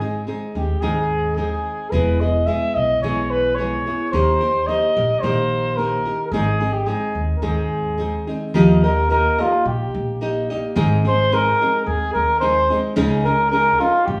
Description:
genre	mexican folk, mariachi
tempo	109 BPM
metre	4/4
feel	straight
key	Ab major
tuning	A4 = 443 Hz
part	dark trumpet	melody	0.0-14.2 s	F4 to E5	-22 LUFS	equal	slapback echo
part	nylon-string guitar	accompaniment	0.0-14.2 s	Ab2 to Eb5	-24 LUFS	equal	none
part	upright bass	bass	0.0-14.2 s	E1 to Eb2	-26 LUFS	equal	none
room	wet studio reverb, RT60 0.6 s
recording	heard from further back in the room, studio reverb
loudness	-19 LUFS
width	mono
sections	0.0-8.5 A section; 8.5-14.2 B section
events	none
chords	0.0 Ab; 1.9 E; 4.1 Eb; 6.3 Ab; 8.5 Ebadd9; 10.8 Ab; 13.0 Dbsus2

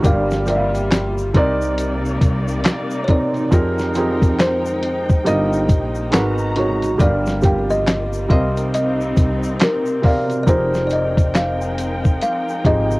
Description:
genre	lo-fi hip hop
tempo	69 BPM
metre	4/4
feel	swing 61% on 16ths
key	F dorian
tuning	A4 = 440 Hz
part	kalimba	melody	0.0-13.0 s	Bb4 to Gb5	-23 LUFS	left 1 dB	cassette tape, tape echo, plate reverb
part	felt-muted upright piano	accompaniment	0.0-13.0 s	C3 to G5	-21 LUFS	right 1 dB	cassette tape
part	warm studio string section	sustained chords	0.0-13.0 s	C3 to Bb5	-26 LUFS	left 1 dB	cassette tape
part	upright bass	bass	0.0-13.0 s	F1 to F2	-23 LUFS	equal	none
part	dusty soul sampler-style drum kit	drums	0.0-12.9 s	handclaps, hi-hat, kick drum, snare drum	-16 LUFS	equal	cassette tape
part	tube shaker	percussion	0.0-13.0 s	none	-43 LUFS	left 5 dB	none
room	light reverb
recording	home recording on cassette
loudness	-16 LUFS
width	side -22 dB against mid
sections	0.0-10.5 A section; 10.5-13.0 B section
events	none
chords	0.0 Gm7; 1.3 Cm9; 3.5 Fm11; 5.3 Eb/G; 6.1 Abm7; 7.0 Gm7; 8.3 Cm9; 10.5 Fm11

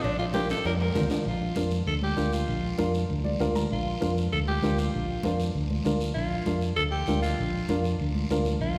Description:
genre	latin, cumbia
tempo	196 BPM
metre	4/4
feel	straight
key	Bb major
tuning	A4 = 440 Hz
part	raspy alto saxophone	melody	0.0-8.8 s	D4 to Bb4	-34 LUFS	equal	none
part	dark upright piano	accompaniment	0.0-8.5 s	D4 to Bb5	-33 LUFS	equal	none
part	fingered electric bass	bass	0.0-8.8 s	Bb1 to F2	-31 LUFS	equal	none
part	cowbell and timbales	percussion	0.0-1.2 s	none	-39 LUFS	equal	none
part	guiro	percussion	0.0-8.8 s	none	-45 LUFS	equal	none
part	congas	percussion	0.2-8.8 s	none	-36 LUFS	equal	none
room	wet concert hall reverb, RT60 2.2 s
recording	recorded in a church or concert hall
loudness	-27 LUFS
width	mono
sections	0.0-1.3 A section; 1.3-8.8 B section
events	drum fill 0.5-1.3; upright piano fill 3.1-3.7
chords	0.0 Bb

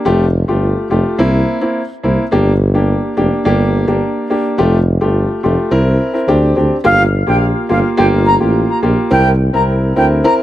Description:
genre	dancehall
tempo	106 BPM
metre	4/4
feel	straight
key	G dorian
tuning	A4 = 440 Hz
part	warm grand piano	accompaniment	0.0-10.4 s	A3 to Bb4	-15 LUFS	equal	none
part	breathy tuba	bass	0.1-10.2 s	F1 to D2	-14 LUFS	equal	none
part	bright wooden flute	melody	6.8-10.3 s	F5 to Bb5	-15 LUFS	equal	digital delay
room	little or no reverb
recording	none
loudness	-11 LUFS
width	side -13 dB against mid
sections	0.0-6.8 A section; 6.8-10.4 B section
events	none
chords	0.1 Fadd9; 1.2 C7; 2.3 Gm; 4.6 Fadd9; 5.7 C7; 6.3 D7sus4; 6.8 Gm7; 9.1 C7

